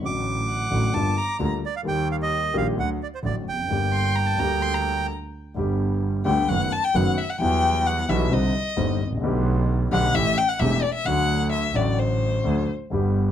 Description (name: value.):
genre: tango.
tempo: 130 BPM.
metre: 4/4.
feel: rubato.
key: G minor, G major from 5.6 s.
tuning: A4 = 440 Hz.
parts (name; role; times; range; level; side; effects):
dark grand piano; accompaniment; 0.0-13.3 s; E1 to G4; -25 LUFS; left 2 dB; none.
clear double bass; bass; 0.0-13.3 s; E1 to E2; -26 LUFS; right 2 dB; none.
bandoneon; melody; 0.1-5.1 s; C5 to D6; -27 LUFS; right 6 dB; plate reverb.
warm violin; second line; 0.5-12.7 s; C5 to C6; -25 LUFS; left 4 dB; none.
room: light reverb.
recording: close, detailed microphones.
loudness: -21 LUFS.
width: side -10 dB against mid.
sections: 0.0-5.6 A section; 5.6-13.3 B section.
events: stop 5.1-5.6; violin solo 5.6-13.3.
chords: 0.0 D/A; 0.9 Gm7; 1.9 Eb; 2.8 D; 3.7 Gm; 5.6 G; 6.5 B7/F#; 7.4 Emadd9; 8.3 Cmadd9; 9.2 Gadd9/B; 10.1 A7; 11.1 D.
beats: | 0.03 0.49 0.95 1.40 | 1.86 2.32 2.77 3.23 | 3.69 4.16 4.62 5.10 | 5.57 6.03 6.50 6.96 | 7.42 7.87 8.33 8.78 | 9.24 9.69 10.15 10.61 | 11.07 11.53 11.99 12.45 | 12.92.